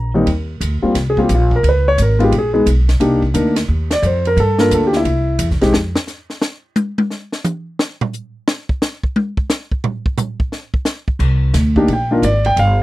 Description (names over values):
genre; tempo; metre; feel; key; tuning
jazz piano trio; 176 BPM; 4/4; swing 64% on 8ths; Eb major; A4 = 443 Hz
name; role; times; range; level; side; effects
warm grand piano; melody; 0.0-5.7, 11.8-12.8 s; Eb2 to Bb5; -15 LUFS; left 1 dB; none
upright bass; bass; 0.0-5.9, 11.2-12.8 s; G1 to G2; -16 LUFS; equal; none
compact cocktail drum kit; drums; 0.3-12.7 s; crash cymbal, hi-hat, kick drum, ride cymbal, snare drum, toms; -20 LUFS; equal; none
room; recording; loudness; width
little or no reverb; dry, close 1970s-style studio recording; -14 LUFS; side -17 dB against mid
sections
0.3-11.2 A section; 11.2-12.8 A section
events
grand piano solo 0.3-12.8; drum solo 5.7-11.2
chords
0.3 Eb69; 1.6 Db7(no3); 3.0 Cm7; 4.4 Gm7; 5.1 C7; 5.7 N.C.; 11.2 C7sus2